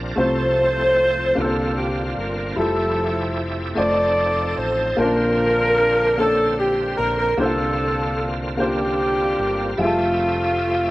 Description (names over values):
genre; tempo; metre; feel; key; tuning
gospel; 50 BPM (dotted quarters); 6/8; straight; F major; A4 = 440 Hz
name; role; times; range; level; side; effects
warm baby grand piano; accompaniment; 0.0-10.9 s; Bb2 to A5; -26 LUFS; left 1 dB; slapback echo
bright tonewheel organ; sustained chords; 0.0-10.9 s; D3 to E5; -28 LUFS; right 1 dB; slow rotary speaker, overdrive, chorus vibrato
fingered electric bass; bass; 0.0-10.9 s; F1 to C2; -28 LUFS; equal; none
mellow saxophone section; melody; 0.2-10.9 s; A3 to D5; -19 LUFS; equal; none
room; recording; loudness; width
little or no reverb; recorded outdoors, with no room sound, lossy compression artefacts; -18 LUFS; side -18 dB against mid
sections
0.0-10.9 A section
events
none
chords
0.2 F/C; 1.4 C9sus4; 2.6 Fmaj9; 3.8 F7; 5.0 Bbmaj9; 7.4 C9sus4; 9.8 Fmaj9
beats
| 0.17 1.37 | 2.57 3.77 | 4.97 6.18 | 7.38 8.58 | 9.79